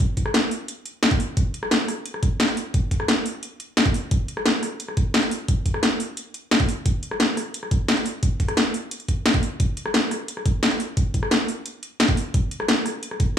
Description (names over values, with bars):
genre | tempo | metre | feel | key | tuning
drum and bass | 175 BPM | 4/4 | straight | none | none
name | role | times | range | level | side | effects
drum and bass drum kit | drums | 0.0-13.3 s | hi-hat, rim click, snare drum | -22 LUFS | equal | none
electronic kick drum | drums | 0.0-13.3 s | none | -22 LUFS | equal | overdrive
room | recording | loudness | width
light reverb | studio ambience | -20 LUFS | side -9 dB against mid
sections
0.0-13.4 A section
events
none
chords
none